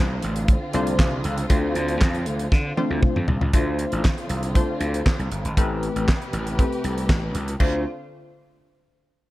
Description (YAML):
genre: early-eighties boogie funk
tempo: 118 BPM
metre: 4/4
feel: straight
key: D dorian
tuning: A4 = 435 Hz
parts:
  - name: funky polysynth comp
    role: accompaniment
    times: 0.0-7.8 s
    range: A3 to C5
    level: -27 LUFS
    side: left 2 dB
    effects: chorus
  - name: warm studio string section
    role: sustained chords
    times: 0.0-7.8 s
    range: C3 to B4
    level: -32 LUFS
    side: equal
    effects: none
  - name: gritty slap bass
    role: bass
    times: 0.0-7.8 s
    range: G1 to D3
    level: -26 LUFS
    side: equal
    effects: overdrive
  - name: damped 70s drum kit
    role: drums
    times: 0.2-7.7 s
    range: crash cymbal, handclaps, hi-hat, kick drum, snare drum, toms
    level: -21 LUFS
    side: equal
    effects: gated reverb
room: small room ambience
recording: none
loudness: -20 LUFS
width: side -17 dB against mid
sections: 0.0-3.5 A section; 3.5-7.6 B section; 7.6-9.3 C section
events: drum fill 2.5-3.5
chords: 0.0 Dm7; 5.6 Am9; 7.6 Dm7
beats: 0.48 0.99 | 1.50 2.01 2.52 3.03 | 3.54 4.04 4.55 5.06 | 5.57 6.08 6.59 7.10 | 7.60